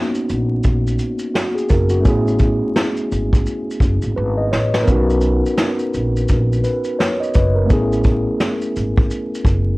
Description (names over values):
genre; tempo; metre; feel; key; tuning
lo-fi hip hop; 85 BPM; 4/4; swing 60% on 16ths; B major; A4 = 441 Hz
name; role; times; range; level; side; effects
mellow tine electric piano; accompaniment; 0.0-9.8 s; A3 to D#5; -19 LUFS; equal; medium stereo tremolo, cassette tape
vintage brush drum kit; drums; 0.1-9.7 s; hi-hat, kick drum, shaker, snare drum; -18 LUFS; equal; none
upright bass; bass; 0.3-9.8 s; F#1 to B1; -19 LUFS; equal; none
room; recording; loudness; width
light reverb; worn, warbling old tape, cassette tape, vinyl crackle, warbly pitch drift; -15 LUFS; side -22 dB against mid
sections
0.0-9.8 A section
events
drum fill 4.2-4.9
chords
0.0 Bmaj9; 2.1 Amaj9; 4.9 Bmaj9; 7.7 Amaj9